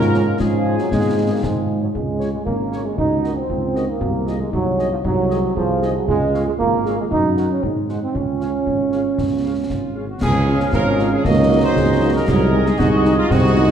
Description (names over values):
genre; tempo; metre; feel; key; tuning
military-style march for wind band; 116 BPM; 2/4; straight; Db major; A4 = 440 Hz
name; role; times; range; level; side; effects
mellow trumpet section; melody; 0.0-13.7 s; F4 to Eb5; -25 LUFS; right 1 dB; none
mellow euphonium; second line; 0.0-13.7 s; Gb3 to Ab4; -25 LUFS; right 2 dB; none
mellow woodwind section; second line; 0.0-13.7 s; F4 to Gb5; -30 LUFS; left 2 dB; none
mellow French horn section; accompaniment; 0.0-13.7 s; Eb3 to Db5; -28 LUFS; left 6 dB; none
mellow tuba; bass; 0.0-13.7 s; Ab1 to Ab2; -21 LUFS; right 1 dB; none
concert snare drum, concert bass drum and clash cymbals; drums; 0.0-13.7 s; none; -25 LUFS; left 1 dB; none
warm trombone section; sustained chords; 0.1-13.7 s; F3 to Eb4; -21 LUFS; right 2 dB; none
room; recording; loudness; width
wet scoring stage reverb, RT60 1.6 s; dark, warm production; -16 LUFS; side -8 dB against mid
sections
0.0-1.9 A section; 1.9-10.2 B section; 10.2-13.7 B section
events
none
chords
0.0 Db/Ab; 0.9 Ab; 1.9 Db; 3.0 Ebm7/Db; 4.0 Ab7/C; 6.1 Db; 7.1 Gb; 7.6 Ab7; 8.1 Db; 11.2 Ebm7/Db; 12.3 Ab7/C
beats
0.39 | 0.91 1.43 | 1.94 2.46 | 2.98 3.49 | 4.01 4.53 | 5.04 5.56 | 6.08 6.59 | 7.11 7.63 | 8.15 8.66 | 9.18 9.70 | 10.21 10.73 | 11.25 11.76 | 12.28 12.79 | 13.31